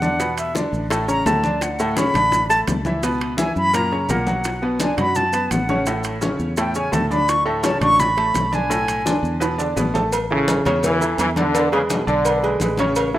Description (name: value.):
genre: latin, salsa.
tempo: 169 BPM.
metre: 4/4.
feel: straight.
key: A major.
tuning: A4 = 442 Hz.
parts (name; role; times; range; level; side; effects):
bright concert flute; melody; 0.0-9.4 s; E5 to C#6; -20 LUFS; equal; none.
clear grand piano; accompaniment; 0.0-13.2 s; A2 to B5; -22 LUFS; equal; none.
fingered electric bass; bass; 0.0-13.2 s; A1 to F#2; -26 LUFS; equal; none.
bongos and cowbell; percussion; 0.0-13.1 s; none; -29 LUFS; left 4 dB; none.
congas; percussion; 0.0-13.2 s; none; -27 LUFS; left 1 dB; none.
maracas; percussion; 0.0-13.1 s; none; -34 LUFS; right 3 dB; none.
timbales and agogo bells; percussion; 0.2-13.1 s; none; -30 LUFS; right 6 dB; none.
bright trombone section; melody; 10.3-12.7 s; B2 to E3; -21 LUFS; equal; none.
room: light reverb, studio reverb.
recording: rough home demo mix.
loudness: -17 LUFS.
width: side -14 dB against mid.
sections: 0.0-10.1 A section; 10.1-13.2 B section.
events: flute solo 0.0-10.1; drum fill 9.4-10.1.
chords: 0.2 E5; 0.9 A; 1.6 Dmaj7; 3.0 C#m7; 3.7 F#; 4.5 Bm7; 5.9 A; 7.3 D5; 8.7 Bm7; 9.4 E5; 10.1 A; 11.5 E7.